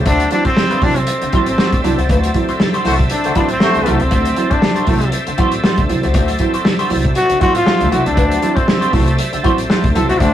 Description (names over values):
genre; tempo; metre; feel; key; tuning
funk; 118 BPM; 4/4; swing 56% on 16ths; D mixolydian; A4 = 441 Hz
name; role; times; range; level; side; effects
tonewheel organ; sustained chords; 0.0-10.3 s; A4 to E5; -23 LUFS; equal; overdrive, chorus vibrato, slow rotary speaker
upright bass; bass; 0.0-10.3 s; A1 to D2; -19 LUFS; equal; none
brilliant trombone; melody; 0.1-10.3 s; A3 to A4; -17 LUFS; left 1 dB; none
electric guitar at the edge of break-up; accompaniment; 0.1-10.3 s; E4 to C5; -23 LUFS; left 1 dB; wah
dark upright piano; stabs; 0.1-10.3 s; D3 to C4; -21 LUFS; right 3 dB; none
warm soul drum kit; drums; 0.1-10.3 s; hi-hat, kick drum, snare drum; -17 LUFS; equal; none
warm horn section; second line; 2.9-4.0 s; A3 to C5; -18 LUFS; equal; none
room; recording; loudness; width
moderate small room reverb, RT60 0.5 s; rough rehearsal-room recording; -12 LUFS; side -11 dB against mid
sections
0.0-10.3 A section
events
trombone solo 0.0-10.3; band accent 2.1-4.1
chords
0.0 D9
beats
| 0.06 0.57 1.08 1.58 | 2.09 2.60 3.10 3.61 | 4.12 4.63 5.13 5.64 | 6.15 6.65 7.16 7.67 | 8.17 8.68 9.19 9.70 | 10.20